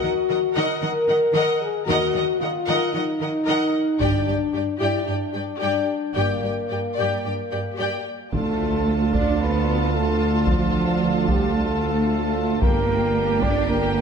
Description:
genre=cinematic, epic orchestral film score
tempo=112 BPM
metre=4/4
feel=straight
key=unclear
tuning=A4 = 443 Hz
part: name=rich symphonic violin section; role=melody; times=0.0-14.0 s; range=F#5 to A5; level=-31 LUFS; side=left 1 dB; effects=none
part: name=rich studio violin section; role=second line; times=0.0-14.0 s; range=F4 to D#5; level=-29 LUFS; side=left 4 dB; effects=none
part: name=warm symphonic viola section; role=accompaniment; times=0.0-14.0 s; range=D4 to A#4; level=-32 LUFS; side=equal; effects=none
part: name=mellow French horn section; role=sustained chords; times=0.0-14.0 s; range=F3 to A#4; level=-25 LUFS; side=left 3 dB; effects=none
part: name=rich symphonic cello section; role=bass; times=0.0-14.0 s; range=G2 to D4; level=-27 LUFS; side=right 2 dB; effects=none
part: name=dark symphonic double bass section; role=bass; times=1.9-14.0 s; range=G1 to D#2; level=-27 LUFS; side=right 4 dB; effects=none
part: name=taiko ensemble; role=drums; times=4.0-5.0, 8.3-13.9 s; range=none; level=-26 LUFS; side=equal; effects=none
part: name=bright trombone section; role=sustained chords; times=8.3-14.0 s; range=D3 to G3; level=-31 LUFS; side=right 4 dB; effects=none
part: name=mellow woodwind section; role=sustained chords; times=8.3-14.0 s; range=D4 to G5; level=-33 LUFS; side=right 1 dB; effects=none
part: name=dark trumpet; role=stabs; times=8.3-14.0 s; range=F4 to D5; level=-26 LUFS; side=right 1 dB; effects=none
part: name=mellow tuba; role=bass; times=8.3-14.0 s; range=G1 to D2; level=-28 LUFS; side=right 5 dB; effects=none
room=wet scoring stage reverb, RT60 1.7 s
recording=none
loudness=-19 LUFS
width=side -6 dB against mid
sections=0.0-8.3 A section; 8.3-14.0 B section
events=none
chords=0.0 D#m; 4.0 Gm; 8.3 Dm; 12.6 Gm

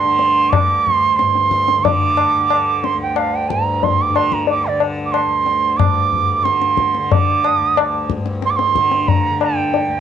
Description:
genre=indian classical, Hindustani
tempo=91 BPM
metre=4/4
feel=straight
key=unclear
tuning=A4 = 441 Hz
part: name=bansuri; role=melody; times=0.0-10.0 s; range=D5 to D6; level=-16 LUFS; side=right 6 dB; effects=cassette tape
part: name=tanpura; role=drone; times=0.0-10.0 s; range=D2 to D3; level=-23 LUFS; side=left 2 dB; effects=none
part: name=tabla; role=percussion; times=0.2-10.0 s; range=none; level=-19 LUFS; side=left 7 dB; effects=none
room=light reverb, studio reverb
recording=home recording on cassette, nothing above 10.7 kHz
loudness=-14 LUFS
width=side -9 dB against mid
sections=0.0-10.0 A section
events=none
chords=none

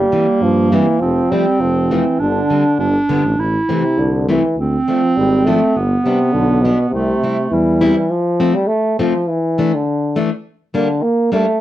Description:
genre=alpine folk, alpine dance band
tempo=102 BPM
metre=2/4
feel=straight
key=C major, F major from 8.1 s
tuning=A4 = 437 Hz
part: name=warm euphonium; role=melody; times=0.0-11.6 s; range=B2 to Bb3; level=-16 LUFS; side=equal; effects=cassette tape
part: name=mellow clarinet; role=second line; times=0.0-8.1 s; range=G3 to E4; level=-17 LUFS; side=right 3 dB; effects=cassette tape
part: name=mellow tuba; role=bass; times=0.0-7.9 s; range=F1 to G2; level=-19 LUFS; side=equal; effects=none
part: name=picked plugged-in steel-string acoustic guitar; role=accompaniment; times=0.1-11.5 s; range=D3 to E4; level=-18 LUFS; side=left 3 dB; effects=cassette tape
room=moderate studio reverb, RT60 0.6 s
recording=home recording on cassette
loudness=-13 LUFS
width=side -13 dB against mid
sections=0.0-8.1 A section; 8.1-11.6 B section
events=none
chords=0.0 C7; 1.0 F; 2.2 Gsus4; 2.8 G; 3.4 Am; 4.6 Dm; 5.8 G; 6.9 C; 8.1 F; 9.3 Dsus2; 10.5 Gm

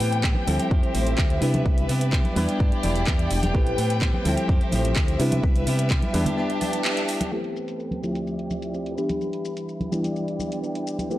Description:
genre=filtered disco house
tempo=127 BPM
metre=4/4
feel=straight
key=unclear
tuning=A4 = 445 Hz
part: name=reed electric piano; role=accompaniment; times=0.0-11.2 s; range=D2 to B4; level=-28 LUFS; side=equal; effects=fast tremolo, phaser, sidechain pumping, low-pass filter
part: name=warm symphonic violin section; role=sustained chords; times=0.0-11.2 s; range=D4 to B5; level=-31 LUFS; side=left 1 dB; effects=sidechain pumping, low-pass filter
part: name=direct-recorded clean electric guitar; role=riff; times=0.0-11.2 s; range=E3 to G4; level=-32 LUFS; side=right 1 dB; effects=sidechain pumping, low-pass filter
part: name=deep dub fingered electric bass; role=bass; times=0.0-6.2 s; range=E1 to C3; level=-24 LUFS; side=equal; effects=sidechain pumping, low-pass filter
part: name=house drum kit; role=drums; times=0.0-11.2 s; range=handclaps, hi-hat, shaker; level=-31 LUFS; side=right 1 dB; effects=sidechain pumping on hats, low-pass filter on hats, low-pass filter on snare, sidechain pumping on perc, low-pass filter on perc
part: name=egg shaker and congas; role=percussion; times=0.0-11.2 s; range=none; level=-33 LUFS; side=equal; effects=sidechain pumping on perc, low-pass filter on perc
part: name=electronic kick drum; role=drums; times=0.2-6.0 s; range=none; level=-22 LUFS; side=equal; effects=none
room=light reverb, digital ambience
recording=dry, gritty hardware recording, transformer saturation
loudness=-21 LUFS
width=side -15 dB against mid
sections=0.0-7.3 A section; 7.3-11.2 B section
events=break 6.4-7.3; band accent 6.9; filter sweep 7.3-11.2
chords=0.5 Dm11; 1.4 Cmaj7; 2.4 Em7; 3.5 Am9; 4.3 Dm11; 5.2 Cmaj7; 6.1 Em7; 7.3 Am9; 8.0 Dm11; 9.0 Em7

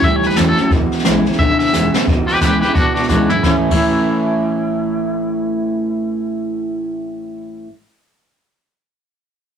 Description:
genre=rockabilly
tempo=176 BPM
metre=4/4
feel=swing 61% on 8ths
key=A major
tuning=A4 = 441 Hz
part: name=twangy electric guitar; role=melody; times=0.0-7.6 s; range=D4 to E5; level=-19 LUFS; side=left 1 dB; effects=tremolo
part: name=picked steel-string acoustic guitar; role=accompaniment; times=0.0-7.7 s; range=E2 to E4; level=-19 LUFS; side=left 2 dB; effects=none
part: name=electric guitar through a small old amp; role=riff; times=0.0-7.7 s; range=E2 to E4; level=-20 LUFS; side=right 3 dB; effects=none
part: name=upright bass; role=bass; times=0.0-7.6 s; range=E1 to F#2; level=-27 LUFS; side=equal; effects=none
part: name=jazz brush drum kit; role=drums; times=0.0-3.8 s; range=crash cymbal, hi-hat, kick drum, snare drum, toms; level=-18 LUFS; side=equal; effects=none
room=moderate studio reverb, RT60 0.5 s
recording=rough rehearsal-room recording, warm saturation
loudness=-14 LUFS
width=side -8 dB against mid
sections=0.0-2.1 A section; 2.1-3.4 B section; 3.4-6.2 C section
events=drum fill 1.7-2.1, 3.1-3.4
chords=0.0 A; 0.7 E; 3.4 A

